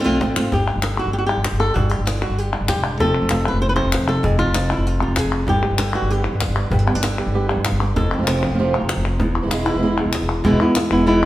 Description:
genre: flamenco.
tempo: 194 BPM.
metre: 4/4.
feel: straight.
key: unclear.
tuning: A4 = 443 Hz.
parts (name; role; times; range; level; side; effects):
flamenco guitar; melody; 0.0-11.3 s; E2 to C5; -20 LUFS; equal; none.
upright bass; bass; 0.0-11.3 s; E1 to E2; -22 LUFS; equal; none.
cajon; percussion; 0.1-11.1 s; none; -27 LUFS; left 1 dB; none.
flamenco guitar; stabs; 0.2-0.5, 5.5-11.3 s; B2 to G4; -24 LUFS; right 2 dB; none.
palmas hand claps; percussion; 0.4-11.3 s; none; -26 LUFS; left 3 dB; none.
room: moderate stone room reverb, RT60 1.3 s.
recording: none.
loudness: -17 LUFS.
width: side -15 dB against mid.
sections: 0.5-10.4 A section.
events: none.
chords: 0.0 Dm7; 0.5 G5; 3.0 F; 5.5 G; 8.0 F; 9.2 E.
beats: 0.21 | 0.52 0.83 1.14 1.45 | 1.76 2.07 2.38 2.69 | 3.00 3.31 3.62 3.93 | 4.24 4.55 4.86 5.17 | 5.48 5.79 6.10 6.41 | 6.72 7.03 7.34 7.65 | 7.96 8.27 8.58 8.89 | 9.20 9.52 9.83 10.14 | 10.45 10.76 11.07.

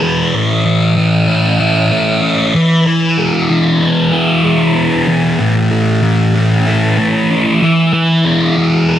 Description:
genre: rock.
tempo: 95 BPM.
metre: 4/4.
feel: straight.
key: E major.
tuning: A4 = 440 Hz.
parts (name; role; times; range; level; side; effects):
thick fuzz guitar; solo; 0.0-9.0 s; A2 to E4; -10 LUFS; equal; distortion, phaser.
room: light reverb.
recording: none.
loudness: -10 LUFS.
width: side -11 dB against mid.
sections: 0.0-9.0 A section.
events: none.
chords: 0.3 A; 2.5 E; 5.4 A; 7.6 E.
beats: | 0.34 0.97 1.60 2.23 | 2.86 3.49 4.12 4.76 | 5.39 6.03 6.66 7.30 | 7.93 8.57.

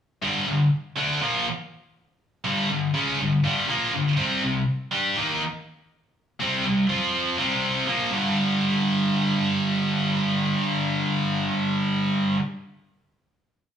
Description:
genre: rock.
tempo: 122 BPM.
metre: 4/4.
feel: straight.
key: unclear.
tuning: A4 = 440 Hz.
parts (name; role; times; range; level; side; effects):
scooped high-gain guitar; solo; 0.2-12.4 s; G2 to G4; -21 LUFS; equal; distortion.
room: wet stone room reverb, RT60 1.1 s.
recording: rough rehearsal-room recording, studio ambience.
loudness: -21 LUFS.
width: side -8 dB against mid.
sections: 0.2-8.1 riff; 8.1-12.0 final chord.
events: none.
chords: 0.2 G5; 4.2 C5; 6.9 F5; 7.4 C5; 8.1 G5.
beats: | 0.23 0.72 1.22 1.71 | 2.20 2.70 3.19 3.69 | 4.18 4.67 5.17 5.66 | 6.15 6.65 7.14 7.63 | 8.12 8.61 9.10 9.58 | 10.07 10.56 11.05 11.53.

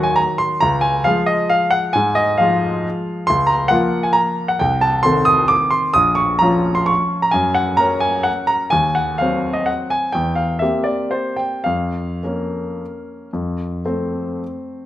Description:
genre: classical, piano waltz.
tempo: 105-147 BPM.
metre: 3/4.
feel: rubato.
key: Db major, Bb minor from 3.3 s.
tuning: A4 = 441 Hz.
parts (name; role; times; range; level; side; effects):
warm baby grand piano; solo; 0.0-14.9 s; Bb1 to Eb6; -16 LUFS; equal; none.
room: moderate scoring stage reverb, RT60 1.6 s.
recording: close, detailed microphones.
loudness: -15 LUFS.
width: side -13 dB against mid.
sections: 0.0-14.9 A section.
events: none.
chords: 0.0 Ebm6; 0.6 Db; 3.3 Bbm/Db; 4.6 Adim/C; 6.0 Bbm; 7.4 Gb; 8.7 Cdim/Eb; 10.1 C7/E; 11.7 Bbm/F; 13.3 F.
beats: 0.17 | 0.62 1.05 1.50 | 1.94 2.39 2.85 | 3.28 3.71 4.17 | 4.62 5.06 5.51 | 5.96 6.42 6.89 | 7.36 7.80 8.28 | 8.74 9.20 9.68 | 10.15 10.62 11.12 | 11.67 12.24 12.81 | 13.34 13.86 14.41.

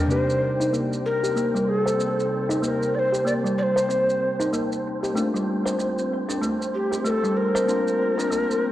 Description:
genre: organic downtempo.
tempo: 95 BPM.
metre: 4/4.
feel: swing 60% on 16ths.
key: C dorian.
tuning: A4 = 440 Hz.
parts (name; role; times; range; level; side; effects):
breathy mellow Native American-style cedar flute; melody; 0.0-8.7 s; G4 to D5; -24 LUFS; left 1 dB; ping-pong delay.
kalimba; arpeggios; 0.0-8.5 s; G3 to C5; -25 LUFS; equal; low-pass filter, ping-pong delay.
wind-like tuned noise texture; texture; 0.0-8.7 s; C4 to G5; -32 LUFS; equal; built-in reverb.
muted felt-like synth keys; accompaniment; 0.1-8.7 s; C3 to D5; -31 LUFS; equal; chorus, low-pass filter, ping-pong delay.
shaker; drums; 0.1-8.6 s; none; -37 LUFS; right 2 dB; none.
room: moderate echo chamber reverb, RT60 2.3 s.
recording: worn, warbling old tape, cassette tape, warbly pitch drift.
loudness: -21 LUFS.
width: side -13 dB against mid.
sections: 0.1-8.7 A section.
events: filter sweep on kalimba 0.1-8.7; filter sweep on synth keys 0.1-8.7.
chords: 0.1 Cm7; 5.2 Dm7; 7.7 Bbadd9.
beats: | 0.10 0.73 1.36 1.99 | 2.62 3.26 3.89 4.52 | 5.15 5.78 6.41 7.04 | 7.68 8.31.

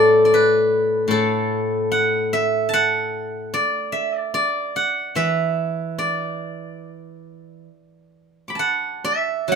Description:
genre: chinese traditional, Chinese solo plucked strings.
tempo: 64-77 BPM.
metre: 4/4.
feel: rubato.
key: D gong mode.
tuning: A4 = 438 Hz.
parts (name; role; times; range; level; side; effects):
steel-string zither; solo; 0.0-9.6 s; A2 to D6; -18 LUFS; equal; none.
room: wet studio reverb, RT60 0.5 s.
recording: minimal, uncompressed stereo recording.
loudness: -18 LUFS.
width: side -6 dB against mid.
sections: 0.0-9.5 A section.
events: none.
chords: none.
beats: 0.31 1.11 1.93 | 2.74 3.54 4.35 5.18 | 6.00 6.82 7.68 8.59 | 9.50.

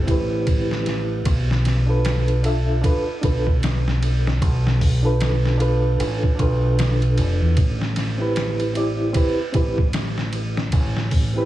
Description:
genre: trip hop.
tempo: 76 BPM.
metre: 4/4.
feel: swing 60% on 16ths.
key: unclear.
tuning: A4 = 441 Hz.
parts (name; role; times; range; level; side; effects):
barky reed electric piano; accompaniment; 0.0-11.5 s; C4 to E5; -24 LUFS; right 1 dB; overdrive, fast tremolo, tape echo.
deep dub fingered electric bass; bass; 0.0-11.5 s; F1 to E2; -20 LUFS; equal; none.
trip hop sampler-style drum kit; drums; 0.1-11.3 s; hi-hat, kick drum, ride cymbal, snare drum; -23 LUFS; equal; none.
room: little or no reverb.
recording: heavily compressed radio sound, small room ambience.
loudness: -18 LUFS.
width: side -14 dB against mid.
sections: 0.0-11.5 A section.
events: none.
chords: 0.0 Am7; 1.3 Bm7b5; 7.6 Am7.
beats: 0.47 | 1.26 2.05 2.83 3.62 | 4.41 5.20 5.99 6.78 | 7.57 8.36 9.15 9.94 | 10.73.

